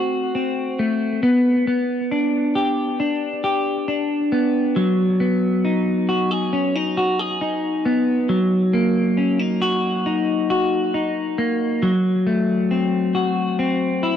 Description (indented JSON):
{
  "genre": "dream pop",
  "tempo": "68 BPM",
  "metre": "4/4",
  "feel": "straight",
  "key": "unclear",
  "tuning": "A4 = 441 Hz",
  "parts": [
    { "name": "clean electric guitar", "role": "solo", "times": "0.0-14.2 s", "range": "F#3 to G#4", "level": "-18 LUFS", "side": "left 1 dB", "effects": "lush chorus, analog delay" }
  ],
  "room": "light reverb",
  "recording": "dry, gritty hardware recording",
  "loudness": "-18 LUFS",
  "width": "side -9 dB against mid",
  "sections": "0.0-14.2 A section",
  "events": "none",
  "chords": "0.0 Am6; 1.2 G; 4.8 B6; 8.3 D#m; 11.8 F#dim"
}